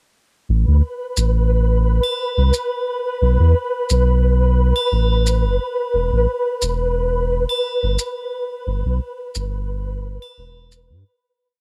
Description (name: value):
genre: trip hop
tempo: 88 BPM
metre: 4/4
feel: straight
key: unclear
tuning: A4 = 440 Hz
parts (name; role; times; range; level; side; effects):
- warm sub bass; bass; 0.5-11.0 s; E1 to G2; -18 LUFS; equal; none
- flickering grainy texture; texture; 0.8-11.4 s; B4; -25 LUFS; equal; built-in reverb, cassette tape
- maracas and triangle; percussion; 1.2-10.9 s; none; -29 LUFS; equal; none
room: little or no reverb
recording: home recording on cassette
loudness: -19 LUFS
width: mono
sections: 0.5-11.4 groove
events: fade-out 7.8-11.4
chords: 0.5 N.C.; 3.2 B5; 5.9 E5; 8.7 G6